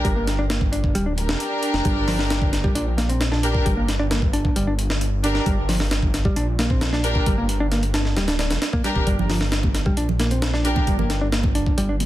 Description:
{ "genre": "breakbeat, breaks", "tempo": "133 BPM", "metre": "4/4", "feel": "straight", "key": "G minor", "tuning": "A4 = 440 Hz", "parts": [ { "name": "picked electric bass", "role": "riff", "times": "0.0-11.9 s", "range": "F3 to D4", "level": "-26 LUFS", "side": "equal", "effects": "vintage 12-bit sampler grit, tape echo" }, { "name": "dark detuned saw bass", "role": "bass", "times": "0.0-12.1 s", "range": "D1 to Bb1", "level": "-23 LUFS", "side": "equal", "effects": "none" }, { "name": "breakbeat sampler-style drum kit", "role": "drums", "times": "0.0-12.1 s", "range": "hi-hat, kick drum, snare drum", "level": "-23 LUFS", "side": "equal", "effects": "none" }, { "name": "dark studio string section", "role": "stabs", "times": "1.2-10.8 s", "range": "D4 to Bb4", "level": "-27 LUFS", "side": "equal", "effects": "tape echo" }, { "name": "congas", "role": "percussion", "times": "9.2-12.1 s", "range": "none", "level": "-29 LUFS", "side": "right 4 dB", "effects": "none" } ], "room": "digital ambience", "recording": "dense, heavily limited modern master", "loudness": "-19 LUFS", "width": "side -14 dB against mid", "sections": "0.0-12.1 A section", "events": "none", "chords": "0.0 Gm" }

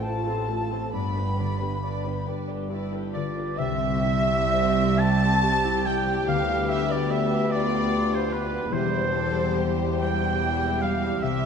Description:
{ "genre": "classical, slow romantic movement for symphony orchestra", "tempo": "41-51 BPM (dotted quarters)", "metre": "6/8", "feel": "rubato", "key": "C major", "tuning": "A4 = 439 Hz", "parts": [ { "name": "warm chamber violin section", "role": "melody", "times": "0.0-11.5 s", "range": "E4 to B5", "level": "-37 LUFS", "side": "left 4 dB", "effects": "none" }, { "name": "concert flute", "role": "second line", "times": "0.0-2.2 s", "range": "A5 to B5", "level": "-33 LUFS", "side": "left 3 dB", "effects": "none" }, { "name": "dark studio violin section", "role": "second line", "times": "0.0-11.5 s", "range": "F4 to A5", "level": "-31 LUFS", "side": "left 1 dB", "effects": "none" }, { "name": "dark chamber viola section", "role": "accompaniment", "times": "0.0-11.5 s", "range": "G3 to A4", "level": "-30 LUFS", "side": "equal", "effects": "none" }, { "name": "concert harp", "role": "arpeggios", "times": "0.0-11.5 s", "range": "G2 to B5", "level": "-30 LUFS", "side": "left 9 dB", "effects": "none" }, { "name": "clear chamber double bass section", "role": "bass", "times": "0.0-11.5 s", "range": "E1 to D2", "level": "-31 LUFS", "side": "right 2 dB", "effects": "none" }, { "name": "rich symphonic cello section", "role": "bass", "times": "0.0-11.5 s", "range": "C2 to C3", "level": "-29 LUFS", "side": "right 3 dB", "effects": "none" }, { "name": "warm oboe", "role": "second line", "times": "3.1-11.5 s", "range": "B4 to A5", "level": "-28 LUFS", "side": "right 2 dB", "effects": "none" } ], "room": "wet scoring stage reverb, RT60 1.8 s", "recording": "dark, warm production", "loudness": "-22 LUFS", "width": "side -6 dB against mid", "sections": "0.0-3.6 A section; 3.6-11.5 B section", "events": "none", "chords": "0.0 F/A; 0.9 G; 3.6 C; 6.3 G7/D; 8.7 C/E" }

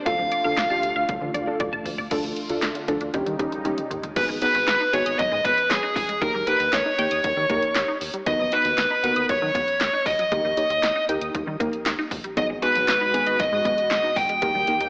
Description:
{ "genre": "synth-pop", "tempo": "117 BPM", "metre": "4/4", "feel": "straight", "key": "G# minor from 4.2 s", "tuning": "A4 = 440 Hz", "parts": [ { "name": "phased analog pad", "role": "sustained chords", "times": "0.0-4.2, 12.4-14.9 s", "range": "B2 to G4", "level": "-37 LUFS", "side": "equal", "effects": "phaser, chorus, shimmer reverb" }, { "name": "dark smooth lead guitar", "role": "melody", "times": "0.1-14.9 s", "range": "G#4 to G5", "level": "-24 LUFS", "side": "equal", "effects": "overdrive, slapback echo, shimmer reverb" }, { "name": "warbly dusty pluck", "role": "accompaniment", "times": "0.1-14.9 s", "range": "A#3 to C#5", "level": "-32 LUFS", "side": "equal", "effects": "chorus, shimmer reverb" }, { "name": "resonant blip pluck", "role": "arpeggios", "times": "0.1-14.9 s", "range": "D3 to D#6", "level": "-35 LUFS", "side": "equal", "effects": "chorus, phaser, slapback echo, shimmer reverb" }, { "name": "round analog bass", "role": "bass", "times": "0.1-14.9 s", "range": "G#1 to Eb3", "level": "-38 LUFS", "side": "equal", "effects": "none" }, { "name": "punchy analog drum machine", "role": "drums", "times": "0.1-14.9 s", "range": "crash cymbal, handclaps, hi-hat, kick drum, snare drum, toms", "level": "-32 LUFS", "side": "equal", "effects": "none" } ], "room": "moderate concert hall reverb, RT60 1.8 s", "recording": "AM radio sound", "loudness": "-23 LUFS", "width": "mono", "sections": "0.0-2.1 A section; 2.1-4.2 B section; 4.2-14.9 C section", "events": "drum fill 1.1-2.1, 3.7-4.2", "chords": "0.1 Dm; 3.1 Eb7; 4.2 G#m7; 6.2 D#; 8.3 B/D#; 10.3 D#; 12.4 G#m7" }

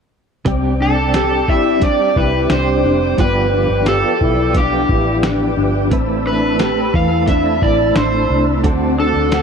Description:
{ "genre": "dream pop", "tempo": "88 BPM", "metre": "4/4", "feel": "straight", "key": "C major", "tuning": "A4 = 440 Hz", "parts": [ { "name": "direct-recorded clean electric guitar", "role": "accompaniment", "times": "0.5-9.4 s", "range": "G2 to B4", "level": "-21 LUFS", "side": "right 5 dB", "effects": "tremolo, wide subtle chorus" }, { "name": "mellow tonewheel organ", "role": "sustained chords", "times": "0.5-9.4 s", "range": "C4 to E6", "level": "-24 LUFS", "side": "left 1 dB", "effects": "chorus vibrato, wide subtle chorus" }, { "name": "mellow electric guitar", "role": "arpeggios", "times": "0.5-9.4 s", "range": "E3 to G4", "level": "-20 LUFS", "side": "left 4 dB", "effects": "ensemble chorus, ping-pong delay" }, { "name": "vintage muted fingered electric bass", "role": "bass", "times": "0.5-9.4 s", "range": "F1 to E2", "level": "-21 LUFS", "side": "equal", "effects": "none" }, { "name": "lo-fi sampler-style drum kit", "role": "drums", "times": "0.5-9.4 s", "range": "hi-hat, kick drum, snare drum", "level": "-19 LUFS", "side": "equal", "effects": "overdrive" }, { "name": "overdriven slide guitar", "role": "melody", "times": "0.8-9.4 s", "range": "G4 to F5", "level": "-18 LUFS", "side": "right 2 dB", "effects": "ping-pong delay" } ], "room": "light reverb", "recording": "none", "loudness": "-13 LUFS", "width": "side -6 dB against mid", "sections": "0.5-9.4 A section", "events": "none", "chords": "0.5 Csus2; 3.2 G7; 5.9 Amadd9; 8.6 D7" }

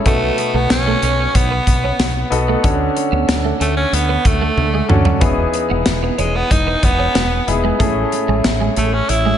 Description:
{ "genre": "1980s-style pop", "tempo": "93 BPM", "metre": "4/4", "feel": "straight", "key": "E major", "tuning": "A4 = 440 Hz", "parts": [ { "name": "warm concert grand piano", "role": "accompaniment", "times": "0.0-9.4 s", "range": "A2 to A4", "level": "-20 LUFS", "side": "left 1 dB", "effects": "slapback echo" }, { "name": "raspy tenor saxophone", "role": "melody", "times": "0.1-9.4 s", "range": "G#3 to E4", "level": "-19 LUFS", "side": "right 1 dB", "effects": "none" }, { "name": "twelve-string electric guitar", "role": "riff", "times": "0.1-9.4 s", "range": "F#3 to D4", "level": "-24 LUFS", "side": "right 6 dB", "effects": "ensemble chorus, ping-pong delay, slapback echo" }, { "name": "woody fretless electric bass", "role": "bass", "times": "0.1-9.3 s", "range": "E1 to D2", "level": "-20 LUFS", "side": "equal", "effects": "ensemble chorus" }, { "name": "modern studio drum kit", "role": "drums", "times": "0.1-9.2 s", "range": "hi-hat, kick drum, snare drum, toms", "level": "-18 LUFS", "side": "equal", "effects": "none" } ], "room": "moderate lush hall reverb, RT60 1.7 s", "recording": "big arena sound, nothing above 10.9 kHz", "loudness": "-14 LUFS", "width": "side -10 dB against mid", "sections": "0.0-9.4 A section", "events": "drum fill 4.6-5.2", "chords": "0.1 B7; 2.6 Dmaj7; 5.2 Emaj7; 7.8 Amaj7" }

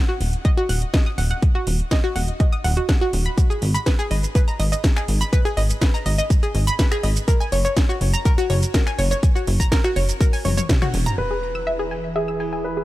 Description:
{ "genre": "progressive house", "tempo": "123 BPM", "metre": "4/4", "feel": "straight", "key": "G# minor", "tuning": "A4 = 440 Hz", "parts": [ { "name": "analog pluck", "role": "arpeggios", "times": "0.1-12.8 s", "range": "F#4 to E6", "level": "-25 LUFS", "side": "equal", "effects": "chorus, sidechain pumping, ping-pong delay" }, { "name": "plucky analog bass", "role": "bass", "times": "0.2-12.8 s", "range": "D#1 to G#1", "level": "-21 LUFS", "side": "equal", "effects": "sidechain pumping" }, { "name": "house drum kit", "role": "drums", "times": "0.2-12.5 s", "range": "finger snaps, hi-hat, shaker, snare drum, toms", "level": "-27 LUFS", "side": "equal", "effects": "low-pass filter on hats, low-pass filter on snare, low-pass filter on perc, low-pass filter on toms, low-pass filter on room" }, { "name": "electronic kick drum", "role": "drums", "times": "0.4-10.8 s", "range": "none", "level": "-18 LUFS", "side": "equal", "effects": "none" }, { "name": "dark grand piano", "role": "melody", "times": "11.2-12.8 s", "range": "G#4 to B4", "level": "-26 LUFS", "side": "equal", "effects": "ping-pong delay" }, { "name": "supersaw pad", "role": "sustained chords", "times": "11.2-12.8 s", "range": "E3 to B4", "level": "-29 LUFS", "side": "right 2 dB", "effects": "sidechain pumping, low-pass filter" } ], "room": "digital ambience", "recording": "none", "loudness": "-18 LUFS", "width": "side -16 dB against mid", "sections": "0.0-11.2 A section; 11.2-12.8 B section", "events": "drum fill 10.4-11.2; band accent 10.7; filter sweep on drum 11.2-12.8; filter sweep on synth pluck 11.2-12.8; filter sweep on supersaw synth 11.2-12.8", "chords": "0.0 B/D# (rootless); 3.4 G#m; 7.3 F#; 11.2 E" }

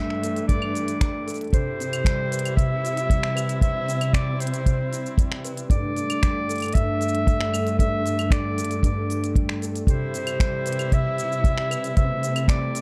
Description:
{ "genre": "folktronica", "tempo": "115 BPM", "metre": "4/4", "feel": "straight", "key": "C major", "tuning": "A4 = 440 Hz", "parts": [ { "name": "bright clarinet", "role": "melody", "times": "0.0-12.8 s", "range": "C5 to E5", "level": "-30 LUFS", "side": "equal", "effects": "delay, plate reverb" }, { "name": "warm string quartet", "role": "sustained chords", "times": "0.0-12.8 s", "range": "G2 to G4", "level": "-32 LUFS", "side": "equal", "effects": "vintage 12-bit sampler grit" }, { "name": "concert harp", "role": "arpeggios", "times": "0.0-12.8 s", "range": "G2 to B4", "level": "-30 LUFS", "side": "equal", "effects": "delay" }, { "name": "organic electronic drum kit", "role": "drums", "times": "0.1-12.8 s", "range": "claves, finger snaps, hi-hat, shaker", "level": "-35 LUFS", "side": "equal", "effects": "none" }, { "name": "kick drum", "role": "drums", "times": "0.5-12.6 s", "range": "none", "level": "-22 LUFS", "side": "equal", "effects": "none" } ], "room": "light reverb", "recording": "dark, warm production", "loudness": "-23 LUFS", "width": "mono", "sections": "0.0-1.5 A section; 1.5-12.8 A section", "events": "none", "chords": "0.0 Gsus2; 1.5 Cmaj7; 5.7 Gsus2; 9.9 Cmaj7" }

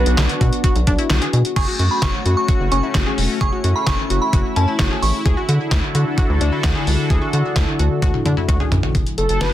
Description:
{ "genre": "synth-pop", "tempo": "130 BPM", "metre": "4/4", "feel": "straight", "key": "F# minor", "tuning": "A4 = 436 Hz", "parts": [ { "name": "mellow synth brass", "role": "melody", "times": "0.0-1.1, 9.2-9.5 s", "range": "A4 to B4", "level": "-23 LUFS", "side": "right 2 dB", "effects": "chorus, ping-pong delay" }, { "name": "sweeping resonant pad", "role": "sustained chords", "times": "0.0-9.5 s", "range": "D3 to A4", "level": "-23 LUFS", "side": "left 2 dB", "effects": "chorus" }, { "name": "analog pluck", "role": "arpeggios", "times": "0.0-8.8 s", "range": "C#4 to G#4", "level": "-26 LUFS", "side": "left 2 dB", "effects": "chorus, ping-pong delay" }, { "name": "rubbery square bass", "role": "bass", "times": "0.0-9.5 s", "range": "E1 to D3", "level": "-18 LUFS", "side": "equal", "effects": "none" }, { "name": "detuned 8-bit digital drum machine", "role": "drums", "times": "0.1-9.5 s", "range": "crash cymbal, handclaps, hi-hat, kick drum, snare drum, toms", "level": "-19 LUFS", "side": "equal", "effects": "none" }, { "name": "glassy synth bell", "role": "second line", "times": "1.6-5.1 s", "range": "A5 to C#6", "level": "-24 LUFS", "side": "right 2 dB", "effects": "chorus, tremolo, ping-pong delay" } ], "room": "light reverb", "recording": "dense, heavily limited modern master", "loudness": "-15 LUFS", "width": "side -12 dB against mid", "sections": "0.0-1.6 A section; 1.6-8.9 B section", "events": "drum fill 8.0-8.9", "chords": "0.0 Bm; 1.6 F#m; 5.3 Dadd9; 8.9 F#m" }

